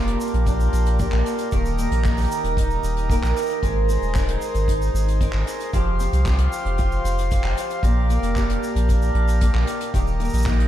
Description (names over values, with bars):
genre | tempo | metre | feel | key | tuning
folktronica | 114 BPM | 4/4 | straight | Eb major | A4 = 440 Hz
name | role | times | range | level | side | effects
hand-pumped harmonium | sustained chords | 0.0-10.7 s | F4 to C6 | -29 LUFS | equal | none
picked old ladder-braced acoustic guitar | arpeggios | 0.0-10.7 s | Bb2 to Bb4 | -26 LUFS | right 1 dB | lush chorus, low-pass filter, diffuse ambient delay
warm sub bass | bass | 0.0-10.7 s | Eb1 to C2 | -21 LUFS | equal | none
vintage brush drum kit | drums | 0.1-10.7 s | handclaps, hi-hat, shaker | -34 LUFS | left 1 dB | none
kick drum | drums | 0.5-10.6 s | none | -24 LUFS | equal | none
room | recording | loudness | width
light reverb, small room ambience | none | -19 LUFS | side -12 dB against mid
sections
0.0-10.7 A section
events
none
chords
0.0 Bb6; 1.5 Eb; 3.6 Abadd9; 5.7 Fsus2; 7.8 Bb6; 9.9 Eb